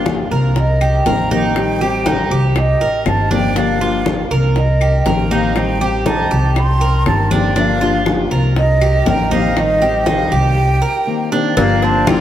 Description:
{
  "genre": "latin, Cuban son and guajira",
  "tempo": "120 BPM",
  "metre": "4/4",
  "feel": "straight",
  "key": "unclear",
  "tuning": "A4 = 440 Hz",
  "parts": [
    { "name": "breathy concert flute", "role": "melody", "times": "0.0-12.2 s", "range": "Eb5 to C6", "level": "-20 LUFS", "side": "right 2 dB", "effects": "none" },
    { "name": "fingerpicked plugged-in steel-string acoustic guitar", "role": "accompaniment", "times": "0.0-12.2 s", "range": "D3 to G4", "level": "-20 LUFS", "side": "left 4 dB", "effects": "none" },
    { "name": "Cuban tres", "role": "arpeggios", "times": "0.0-12.2 s", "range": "D4 to Bb4", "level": "-20 LUFS", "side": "right 3 dB", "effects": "none" },
    { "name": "upright bass", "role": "bass", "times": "0.0-12.2 s", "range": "G1 to C2", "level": "-17 LUFS", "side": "equal", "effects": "none" },
    { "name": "bongos and cowbell", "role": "percussion", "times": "0.1-12.2 s", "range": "none", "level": "-26 LUFS", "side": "left 3 dB", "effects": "none" },
    { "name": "claves", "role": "percussion", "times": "0.1-12.2 s", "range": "none", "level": "-34 LUFS", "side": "left 6 dB", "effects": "none" },
    { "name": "congas", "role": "percussion", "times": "0.1-12.2 s", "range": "none", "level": "-23 LUFS", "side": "left 2 dB", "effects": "none" },
    { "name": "bright trumpet", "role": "second line", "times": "11.6-12.2 s", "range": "Bb3 to C4", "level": "-23 LUFS", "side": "left 2 dB", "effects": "none" }
  ],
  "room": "moderate plate reverb, RT60 3.6 s",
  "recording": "heard from further back in the room",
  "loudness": "-13 LUFS",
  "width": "side -11 dB against mid",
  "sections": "0.0-11.6 A section",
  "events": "none",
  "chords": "0.0 Gm7; 0.6 Cm7; 1.6 Am7b5; 2.6 Cm7; 3.6 Gm7; 4.6 Cm7; 5.6 Am7b5; 6.6 Cm7; 7.6 Gm7; 8.6 Cm7; 9.6 Am7b5; 10.6 Cm7; 11.6 Gm7",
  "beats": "0.06 0.56 1.06 | 1.56 2.06 2.56 3.06 | 3.56 4.06 4.56 5.06 | 5.56 6.06 6.56 7.06 | 7.56 8.06 8.56 9.07 | 9.57 10.07 10.57 11.07 | 11.57 12.07"
}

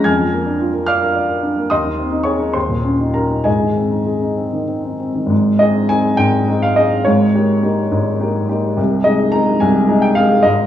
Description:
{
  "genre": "classical, romantic character piece for solo piano",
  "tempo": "63-74 BPM (dotted quarters)",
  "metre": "6/8",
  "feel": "rubato",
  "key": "Ab major",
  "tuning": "A4 = 441 Hz",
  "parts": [
    { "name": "warm baby grand piano", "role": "solo", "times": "0.0-10.7 s", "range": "Ab1 to Ab6", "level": "-13 LUFS", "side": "equal", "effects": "none" }
  ],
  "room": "wet recital hall reverb, RT60 1.6 s",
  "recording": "worn, warbling old tape, cassette tape, warbly pitch drift, small room reverb",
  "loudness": "-13 LUFS",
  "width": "side -11 dB against mid",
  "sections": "0.0-5.3 A section; 5.3-10.7 B section",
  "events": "none",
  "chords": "0.1 Bb7/F; 1.7 Ab/Eb; 2.5 Eb7; 3.5 Ab; 7.1 Eb7/Ab; 8.8 Ab/C",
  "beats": "| 0.06 0.88 | 1.70 2.55 | 3.46 4.38 | 5.31 6.19 | 7.06 7.92 | 8.78 9.62 | 10.45"
}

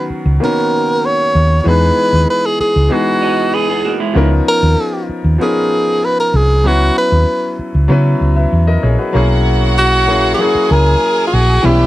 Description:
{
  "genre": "soul",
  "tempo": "96 BPM",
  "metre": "4/4",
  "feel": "straight",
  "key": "unclear",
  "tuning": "A4 = 445 Hz",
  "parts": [
    { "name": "breathy tenor saxophone", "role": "melody", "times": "0.0-11.9 s", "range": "E4 to C#5", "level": "-14 LUFS", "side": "equal", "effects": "none" },
    { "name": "bright grand piano", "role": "accompaniment", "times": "0.0-11.9 s", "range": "D#3 to E5", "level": "-17 LUFS", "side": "left 2 dB", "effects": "none" },
    { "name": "hollow-body short-scale fingered electric bass", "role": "bass", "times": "0.1-11.9 s", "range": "A#1 to C#3", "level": "-12 LUFS", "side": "equal", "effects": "none" },
    { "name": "electric guitar through a small old amp", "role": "riff", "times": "3.2-4.3 s", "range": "G#3 to D#5", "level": "-18 LUFS", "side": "right 7 dB", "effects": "none" },
    { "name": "vibraphone with soft mallets", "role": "texture", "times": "9.1-11.3 s", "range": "C#5", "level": "-28 LUFS", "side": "right 5 dB", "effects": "none" },
    { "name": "bright studio violin section", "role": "second line", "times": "9.2-11.9 s", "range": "F#4 to G#5", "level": "-20 LUFS", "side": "right 1 dB", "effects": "none" }
  ],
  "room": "light reverb",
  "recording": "dry, close 1970s-style studio recording",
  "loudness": "-11 LUFS",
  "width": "side -15 dB against mid",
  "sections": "0.0-9.1 A section; 9.1-11.9 B section",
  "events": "none",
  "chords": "0.0 Bmaj9; 1.7 Emaj7; 4.2 C#13; 6.6 F#7sus4/C#; 9.1 F#9",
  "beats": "0.41 1.03 | 1.66 2.28 2.91 3.53 | 4.16 4.78 5.40 6.03 | 6.65 7.27 7.90 8.52 | 9.14 9.77 10.39 11.02 | 11.64"
}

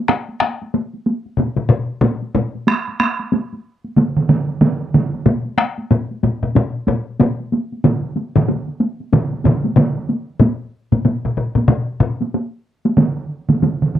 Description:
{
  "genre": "japanese traditional, taiko drum ensemble",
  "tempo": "93 BPM",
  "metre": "4/4",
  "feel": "swing 60% on 16ths",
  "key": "none",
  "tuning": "none",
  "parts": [
    { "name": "taiko ensemble", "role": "percussion", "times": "0.1-13.8 s", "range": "none", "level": "-18 LUFS", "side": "equal", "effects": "none" },
    { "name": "taiko ensemble", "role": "percussion", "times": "0.1-12.2 s", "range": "none", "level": "-17 LUFS", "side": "left 3 dB", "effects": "none" },
    { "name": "solo taiko drums", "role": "percussion", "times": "2.7-14.0 s", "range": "none", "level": "-17 LUFS", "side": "right 3 dB", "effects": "none" }
  ],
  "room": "moderate booth ambience, RT60 0.2 s",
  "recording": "dry, close 1970s-style studio recording",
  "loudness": "-16 LUFS",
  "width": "side -11 dB against mid",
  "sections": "0.1-10.4 A section; 10.4-14.0 B section",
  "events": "none",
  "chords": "none",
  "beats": "| 0.08 0.73 1.38 2.03 | 2.67 3.32 3.97 4.62 | 5.26 5.91 6.55 7.20 | 7.84 8.48 9.13 9.77 | 10.41 11.05 11.69 12.33 | 12.97 13.61"
}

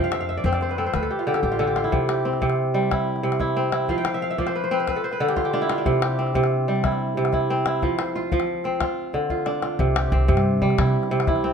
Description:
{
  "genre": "west african traditional, West African string and xylophone music",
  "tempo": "122 BPM (dotted quarters)",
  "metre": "12/8",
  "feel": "straight",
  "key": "C major",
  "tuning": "A4 = 439 Hz",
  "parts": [
    { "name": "kora", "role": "arpeggios", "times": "0.0-11.5 s", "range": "C3 to G5", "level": "-21 LUFS", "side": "right 1 dB", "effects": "none" },
    { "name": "upright bass", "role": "bass", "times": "0.0-1.8, 9.8-11.5 s", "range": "A1 to C3", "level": "-23 LUFS", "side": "equal", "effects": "none" },
    { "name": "calabash", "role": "percussion", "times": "0.0-11.4 s", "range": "none", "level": "-29 LUFS", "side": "left 4 dB", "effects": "none" }
  ],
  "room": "light reverb",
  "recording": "close, detailed microphones",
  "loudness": "-20 LUFS",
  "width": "side -6 dB against mid",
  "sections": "0.0-1.9 A section; 1.9-11.5 B section",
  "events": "kora fill 0.0-1.9, 3.9-5.9; drum fill 1.4-1.9, 9.1-9.8",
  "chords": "0.0 F5; 0.9 D5; 1.9 C; 3.9 F5; 4.9 N.C.; 5.9 C; 7.8 F5; 8.8 Dm; 9.8 C",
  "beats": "0.44 0.94 1.43 | 1.92 2.42 2.91 3.40 | 3.89 4.38 4.87 5.36 | 5.86 6.35 6.84 7.33 | 7.82 8.32 8.81 9.30 | 9.79 10.29 10.78 11.27"
}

